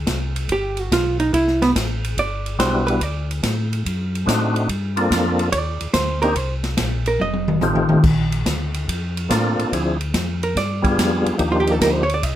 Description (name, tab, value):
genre	soul jazz organ trio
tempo	143 BPM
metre	4/4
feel	swing 67% on 8ths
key	G minor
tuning	A4 = 441 Hz
part	mellow tonewheel organ	bass	0.0-12.4 s	F1 to A2	-24 LUFS	equal	overdrive, chorus vibrato, slow rotary speaker
part	open jazz drum kit	drums	0.1-12.4 s	crash cymbal, hi-hat, kick drum, ride cymbal, snare drum, toms	-23 LUFS	equal	none
part	hollow-body jazz guitar	accompaniment	0.5-7.9, 10.4-12.4 s	B3 to Eb5	-21 LUFS	right 2 dB	none
part	percussive tonewheel organ	melody	2.6-12.0 s	F3 to A4	-20 LUFS	equal	slow rotary speaker, overdrive, chorus vibrato
room	light reverb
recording	none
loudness	-18 LUFS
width	side -12 dB against mid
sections	0.0-8.0 A section; 8.0-12.4 A section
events	hollow-body jazz guitar solo 0.0-12.4; drum fill 7.2-8.0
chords	0.5 G; 1.3 Cmaj9#11; 3.0 D7b9; 4.7 Gm11; 6.4 Bbsus2; 7.2 F7; 8.0 Bbmaj7; 9.7 Dm7b5; 10.6 G7b9; 11.4 Cm11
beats	0.07 0.49 0.91 | 1.33 1.75 2.17 2.59 | 3.01 3.43 3.85 4.27 | 4.68 5.11 5.52 5.94 | 6.36 6.78 7.20 7.62 | 8.04 8.46 8.88 9.30 | 9.72 10.14 10.56 10.98 | 11.40 11.82 12.24